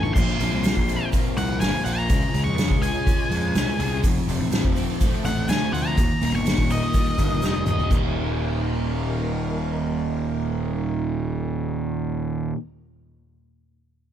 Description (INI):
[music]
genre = psychedelic rock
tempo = 124 BPM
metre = 4/4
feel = straight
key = unclear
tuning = A4 = 440 Hz
[part]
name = octave-fuzz lead guitar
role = melody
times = 0.0-7.9 s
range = Eb5 to Db6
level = -28 LUFS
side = left 1 dB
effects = distortion, slapback echo
[part]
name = phased string machine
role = sustained chords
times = 0.0-12.5 s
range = F3 to Bb4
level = -36 LUFS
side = right 2 dB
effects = ensemble chorus, phaser
[part]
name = crunchy overdriven guitar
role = riff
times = 0.0-12.6 s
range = Eb2 to A4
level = -26 LUFS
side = equal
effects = flanger
[part]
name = fuzz picked electric bass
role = bass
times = 0.0-12.5 s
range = Eb1 to F2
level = -27 LUFS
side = equal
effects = overdrive
[part]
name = deep rumbling drone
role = drone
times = 0.3-12.5 s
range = Eb2 to Bb2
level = -36 LUFS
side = left 1 dB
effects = none
[part]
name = soft-mallet drum kit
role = drums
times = 0.0-8.0 s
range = crash cymbal, hi-hat, kick drum, snare drum, toms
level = -24 LUFS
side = equal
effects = none
[part]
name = egg shaker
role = percussion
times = 0.0-8.1 s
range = none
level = -43 LUFS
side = right 11 dB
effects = none
[sound]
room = studio reverb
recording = none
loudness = -21 LUFS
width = side -10 dB against mid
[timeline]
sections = 0.0-7.9 A section; 7.9-11.8 B section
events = drum fill 0.0, 7.4-7.9; lead electric guitar solo 0.0-7.9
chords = 0.2 Bbsus2; 2.1 Db; 4.0 F; 6.0 Eb